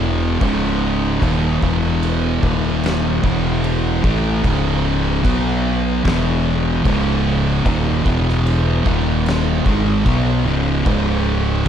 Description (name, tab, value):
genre	stoner and doom metal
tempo	75 BPM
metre	4/4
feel	straight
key	C# minor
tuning	A4 = 441 Hz
part	sludgy distorted guitar	riff	0.0-11.7 s	C#2 to B3	-24 LUFS	equal	overdrive
part	thick fuzz guitar	riff	0.0-11.7 s	C#2 to B3	-21 LUFS	left 8 dB	distortion
part	thick fuzz guitar	riff	0.0-11.7 s	C#2 to B3	-21 LUFS	right 9 dB	distortion
part	growling fingered electric bass	bass	0.0-11.7 s	C#1 to B1	-22 LUFS	equal	overdrive, tube saturation
part	oversized low-tuned drum kit	drums	0.4-11.7 s	crash cymbal, kick drum, snare drum	-23 LUFS	equal	none
room	small room ambience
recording	dark, warm production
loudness	-15 LUFS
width	side -9 dB against mid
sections	0.0-11.7 A section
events	none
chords	0.4 C#5; 1.6 E5; 2.4 D#5; 3.2 E5; 4.0 C#m; 5.2 B5; 6.0 E5; 6.8 C#5; 8.0 E5; 8.8 D#5; 9.7 C#5